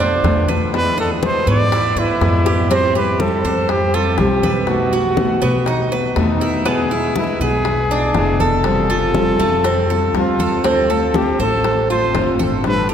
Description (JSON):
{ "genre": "latin, Cuban son and guajira", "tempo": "121 BPM", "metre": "4/4", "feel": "straight", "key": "unclear", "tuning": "A4 = 445 Hz", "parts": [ { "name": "breathy trumpet", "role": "melody", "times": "0.0-12.9 s", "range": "D#4 to D5", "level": "-19 LUFS", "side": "equal", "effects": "none" }, { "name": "fingerpicked steel-string acoustic guitar", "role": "accompaniment", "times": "0.0-12.9 s", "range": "B2 to G4", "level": "-21 LUFS", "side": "left 2 dB", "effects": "none" }, { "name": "Cuban tres", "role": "arpeggios", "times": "0.0-12.9 s", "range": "A3 to C5", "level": "-21 LUFS", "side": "right 2 dB", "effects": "none" }, { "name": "upright bass", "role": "bass", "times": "0.0-12.9 s", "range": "F1 to B2", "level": "-21 LUFS", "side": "equal", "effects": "none" }, { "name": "congas", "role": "percussion", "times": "0.0-12.9 s", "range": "none", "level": "-27 LUFS", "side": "left 1 dB", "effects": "none" }, { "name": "bongos", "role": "percussion", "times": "0.2-12.9 s", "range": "none", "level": "-26 LUFS", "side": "left 5 dB", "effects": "none" } ], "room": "wet cathedral reverb, RT60 5.8 s", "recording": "recorded in a church or concert hall", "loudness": "-14 LUFS", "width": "side -8 dB against mid", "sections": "0.0-12.9 A section", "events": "drum fill 2.5, 10.4", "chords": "0.0 Bm7b5; 0.7 E; 2.7 Fsus2; 4.7 B7; 6.7 E7; 8.7 Fadd9; 10.7 Dm7" }